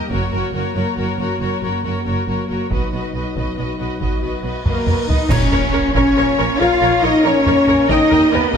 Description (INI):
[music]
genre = cinematic, epic orchestral film score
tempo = 92 BPM (dotted quarters)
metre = 12/8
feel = straight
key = Bb phrygian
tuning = A4 = 441 Hz
[part]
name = warm symphonic violin section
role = melody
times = 0.0-8.6 s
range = Bb4 to F5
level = -26 LUFS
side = left 4 dB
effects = none
[part]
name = warm symphonic violin section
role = second line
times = 0.0-8.4 s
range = Bb4 to G5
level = -26 LUFS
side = left 2 dB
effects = none
[part]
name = rich symphonic viola section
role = accompaniment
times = 0.0-8.6 s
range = Gb4 to Bb4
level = -27 LUFS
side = right 1 dB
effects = none
[part]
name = dark French horn section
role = sustained chords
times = 0.0-8.5 s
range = Gb3 to F4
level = -20 LUFS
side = left 2 dB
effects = none
[part]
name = dark symphonic cello section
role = bass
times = 0.1-8.6 s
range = Gb2 to F4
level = -24 LUFS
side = right 2 dB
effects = none
[part]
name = rich symphonic double bass section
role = bass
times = 0.1-8.6 s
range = Gb1 to Eb2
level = -25 LUFS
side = right 3 dB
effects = none
[part]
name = taiko ensemble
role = drums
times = 0.1-8.6 s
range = none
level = -22 LUFS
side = equal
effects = none
[part]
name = cymbal swell and impact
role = sound effects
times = 4.5-7.9 s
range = none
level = -32 LUFS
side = equal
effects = none
[part]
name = flute section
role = second line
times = 4.7-8.6 s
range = Bb4 to F5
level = -24 LUFS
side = equal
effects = none
[part]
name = mellow trumpet section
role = stabs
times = 4.7-8.6 s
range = Bb4 to F5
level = -24 LUFS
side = left 3 dB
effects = none
[part]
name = rich studio string section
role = sustained chords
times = 5.3-8.6 s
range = Bb3 to Eb5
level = -25 LUFS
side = equal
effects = none
[part]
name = clash cymbals and concert bass drum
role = percussion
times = 5.3-6.1 s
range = none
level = -24 LUFS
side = equal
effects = none
[part]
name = timpani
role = percussion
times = 5.3-5.9 s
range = Bb2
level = -27 LUFS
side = left 1 dB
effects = none
[sound]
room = wet scoring stage reverb, RT60 1.8 s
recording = none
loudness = -15 LUFS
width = side -7 dB against mid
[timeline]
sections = 0.0-5.3 A section; 5.3-8.6 B section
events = cymbal swell 4.5-5.3; drum fill 4.7-5.3; band accent 5.3-5.7; impact 5.3-7.9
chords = 0.1 Gb; 2.7 B; 5.3 Bbm; 7.9 Eb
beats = | 0.11 0.76 1.41 2.06 | 2.71 3.36 4.01 4.66 | 5.31 5.96 6.60 7.25 | 7.90 8.54